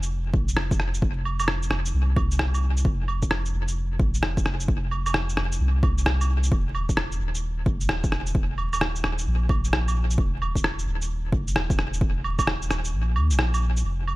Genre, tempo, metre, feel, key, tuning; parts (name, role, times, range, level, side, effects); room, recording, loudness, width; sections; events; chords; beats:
future garage; 131 BPM; 4/4; swing 64% on 16ths; A4 = 440 Hz
soft dub sub bass; bass; 0.0-14.2 s; Eb1 to Eb2; -25 LUFS; equal; tube saturation, sidechain pumping
electronic shaker, rim click and claves; drums; 0.0-14.2 s; -28 LUFS; right 1 dB; small room reverb, dub echo
electronic kick drum; drums; 0.3-12.5 s; -25 LUFS; equal; overdrive, small room reverb
little or no reverb; echo-heavy mix, vinyl crackle; -22 LUFS; side -20 dB against mid
0.0-13.8 A section
kick drops out 12.9-13.8
0.10 0.56 | 1.02 1.48 1.94 2.40 | 2.85 3.31 3.77 4.23 | 4.68 5.14 5.60 6.06 | 6.52 6.97 7.43 7.89 | 8.35 8.81 9.27 9.72 | 10.18 10.64 11.10 11.55 | 12.01 12.47 12.93 13.39 | 13.85